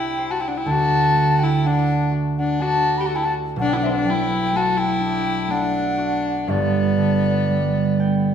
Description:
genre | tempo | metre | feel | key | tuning
celtic folk, Celtic slow air | 62 BPM | 3/4 | rubato | unclear | A4 = 439 Hz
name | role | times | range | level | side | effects
wooden flute | melody | 0.0-8.3 s | D5 to B5 | -23 LUFS | equal | none
rich fiddle | second line | 0.0-8.3 s | B3 to G4 | -24 LUFS | left 4 dB | none
concert harp | accompaniment | 0.0-8.3 s | G1 to G5 | -21 LUFS | right 2 dB | none
room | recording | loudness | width
wet recital hall reverb, RT60 1.5 s | recorded in a church or concert hall | -18 LUFS | side -8 dB against mid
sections
0.0-8.3 A section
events
harp fill 7.5-8.3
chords
0.0 Cadd9; 0.7 D; 3.6 Bm7; 6.5 G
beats
| 0.67 1.64 2.61 | 3.57 4.53 5.49 | 6.47 7.47

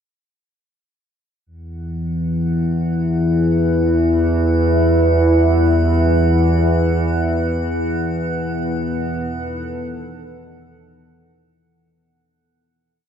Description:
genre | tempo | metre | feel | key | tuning
dark ambient drone | free time | none | none | E harmonic minor | A4 = 441 Hz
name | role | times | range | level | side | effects
deep dark ambient pad | sustained chords | 3.6-11.7 s | E3 to A4 | -23 LUFS | right 1 dB | chorus, built-in reverb
analog drone | drone | 1.7-11.8 s | E2 to E3 | -16 LUFS | equal | chorus
metallic inharmonic drone | texture | 2.5-11.7 s | F#5 | -30 LUFS | right 4 dB | chorus, built-in reverb
room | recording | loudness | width
wet cathedral reverb, RT60 5.5 s | none | -15 LUFS | side -8 dB against mid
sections
1.5-11.7 A section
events
fade-in on ambient pad 1.5-11.7; fade-in on synth drone 1.5-11.7; fade-out 6.6-11.7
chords
1.5 Emadd9; 6.6 B/E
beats
free time

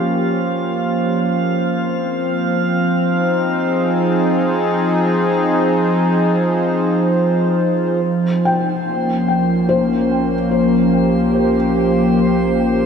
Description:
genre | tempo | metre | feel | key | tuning
ambient | 74 BPM | 4/4 | straight | Bb dorian | A4 = 440 Hz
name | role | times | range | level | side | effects
warm analog pad | sustained chords | 0.0-12.9 s | F3 to C5 | -15 LUFS | equal | chorus
drifting glass-harmonics texture | texture | 0.0-12.9 s | F4 to C6 | -26 LUFS | equal | chorus, built-in reverb
deep rumbling drone | bass | 9.2-12.9 s | Bb1 | -32 LUFS | left 1 dB | built-in reverb
felt-muted upright piano | arpeggios | 8.5-12.9 s | C5 to G5 | -22 LUFS | left 3 dB | ping-pong delay
room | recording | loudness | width
wet huge ambient reverb, RT60 7.7 s | dreamy mix soaked in reverb, nothing above 10.6 kHz | -14 LUFS | side -6 dB against mid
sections
0.0-8.0 A section; 8.0-12.9 B section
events
fade-out on synth texture 0.0-8.0; fade-in on synth drone 8.0-12.9; fade-in on synth texture 8.0-12.9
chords
0.0 Bbm69; 1.5 Fm7; 8.0 Bbm69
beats
0.69 | 1.49 2.30 3.11 3.92 | 4.74 5.56 6.38 7.21 | 8.04 8.87 9.69 10.52 | 11.33 12.14

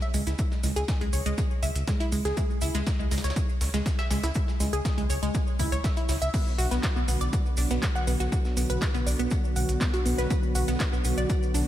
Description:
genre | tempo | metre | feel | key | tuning
progressive house | 121 BPM | 4/4 | straight | unclear | A4 = 439 Hz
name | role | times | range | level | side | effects
wide unison pluck | arpeggios | 0.0-11.6 s | G#3 to F#5 | -31 LUFS | equal | sidechain pumping, analog delay
maracas | percussion | 0.0-11.7 s | none | -41 LUFS | right 3 dB | none
round analog bass | bass | 0.1-11.6 s | B1 to C#2 | -28 LUFS | equal | sidechain pumping
big-room dance drum kit | drums | 0.1-11.6 s | crash cymbal, handclaps, hi-hat | -36 LUFS | right 2 dB | overdrive
dusty soul sampler-style drum kit | drums | 0.1-11.7 s | hi-hat, snare drum, tambourine | -41 LUFS | left 1 dB | high-pass filter on perc, high-pass filter on snare, high-pass filter on hats, high-pass filter on room
electronic kick drum | drums | 0.4-11.4 s | none | -27 LUFS | equal | overdrive
warm analog pad | sustained chords | 6.3-11.7 s | D3 to F#4 | -33 LUFS | equal | chorus, sidechain pumping
room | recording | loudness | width
light reverb, digital ambience | none | -24 LUFS | side -12 dB against mid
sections
0.0-11.7 A section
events
none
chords
0.0 C#m; 6.3 Bm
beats
| 0.39 0.88 1.38 1.88 | 2.37 2.87 3.36 3.86 | 4.36 4.85 5.35 5.84 | 6.34 6.83 7.33 7.83 | 8.32 8.82 9.31 9.81 | 10.31 10.80 11.30

